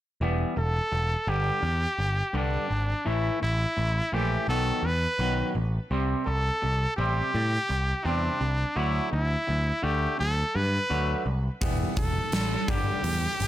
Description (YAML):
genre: quiet-loud alternative rock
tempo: 84 BPM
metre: 4/4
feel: straight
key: E minor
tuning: A4 = 441 Hz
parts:
  - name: twangy electric guitar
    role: arpeggios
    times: 0.2-13.5 s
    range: G2 to C4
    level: -32 LUFS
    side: equal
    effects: none
  - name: growling picked electric bass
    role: bass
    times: 0.2-13.5 s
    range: E1 to A2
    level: -27 LUFS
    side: equal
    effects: overdrive
  - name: bright trumpet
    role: melody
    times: 0.6-13.5 s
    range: D4 to B4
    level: -29 LUFS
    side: equal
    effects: none
  - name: huge arena drum kit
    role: drums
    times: 11.6-13.5 s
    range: hi-hat, kick drum, snare drum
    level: -28 LUFS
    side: equal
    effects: none
room: light reverb, studio ambience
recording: none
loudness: -24 LUFS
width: side -13 dB against mid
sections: 0.2-13.5 A section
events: none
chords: 0.2 Em; 1.3 G5; 3.1 A5; 4.5 B; 5.9 C5; 8.8 D; 11.6 Em; 12.7 G5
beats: | 0.21 0.92 1.64 2.35 | 3.06 3.78 4.49 5.21 | 5.92 6.63 7.34 8.06 | 8.77 9.48 10.20 10.91 | 11.62 12.33 13.05